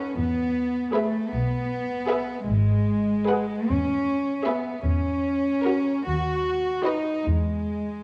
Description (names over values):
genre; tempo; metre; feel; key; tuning
classical, slow romantic movement for string orchestra; 51 BPM (dotted quarters); 6/8; uneven beats, rubato; B major; A4 = 439 Hz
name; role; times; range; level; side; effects
warm symphonic violin section; melody; 0.0-7.1 s; C#5 to F#5; -36 LUFS; equal; none
rich symphonic violin section; second line; 0.0-7.1 s; A#4 to B4; -34 LUFS; equal; none
dark symphonic viola section; accompaniment; 0.0-7.1 s; F#4 to G#4; -32 LUFS; equal; none
warm chamber cello section; bass; 0.0-8.0 s; G#3 to F#4; -27 LUFS; equal; none
dark chamber double bass section; bass; 0.2-8.0 s; G#1 to E2; -28 LUFS; equal; none
room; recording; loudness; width
moderate scoring stage reverb, RT60 1.7 s; dark, warm production; -25 LUFS; mono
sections
0.0-8.0 A section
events
none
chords
0.2 E; 2.5 G#m7; 3.7 E; 4.8 F#7/E; 6.1 B/D#; 7.2 C#m/E (rootless)